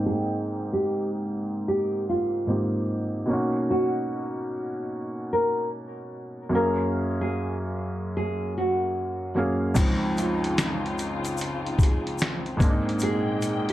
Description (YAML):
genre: lo-fi hip hop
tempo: 74 BPM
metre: 4/4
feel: swing 64% on 16ths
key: Db major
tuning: A4 = 440 Hz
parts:
  - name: felt-muted upright piano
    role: accompaniment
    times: 0.0-13.7 s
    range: Db2 to G5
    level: -27 LUFS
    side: equal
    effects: cassette tape, low-pass filter
  - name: nylon-string guitar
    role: melody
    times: 0.1-13.7 s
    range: F4 to Bb4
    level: -28 LUFS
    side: equal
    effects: low-pass filter
  - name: warm studio string section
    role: sustained chords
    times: 9.8-13.7 s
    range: Bb2 to G5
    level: -33 LUFS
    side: left 2 dB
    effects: low-pass filter
  - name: trip hop sampler-style drum kit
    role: drums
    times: 9.8-13.7 s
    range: crash cymbal, finger snaps, hi-hat, kick drum, snare drum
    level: -24 LUFS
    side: equal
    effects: none
  - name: tube shaker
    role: percussion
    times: 9.8-13.7 s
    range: none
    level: -40 LUFS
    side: left 6 dB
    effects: none
room: moderate studio reverb, RT60 0.7 s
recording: dark, warm production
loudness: -24 LUFS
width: side -14 dB against mid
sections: 0.0-9.8 A section; 9.8-13.7 B section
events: filter sweep 0.0-9.8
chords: 0.0 Abmaj9; 3.3 Cbmaj9; 6.5 Gbmaj9; 9.8 Dbmaj9; 12.6 Abmaj9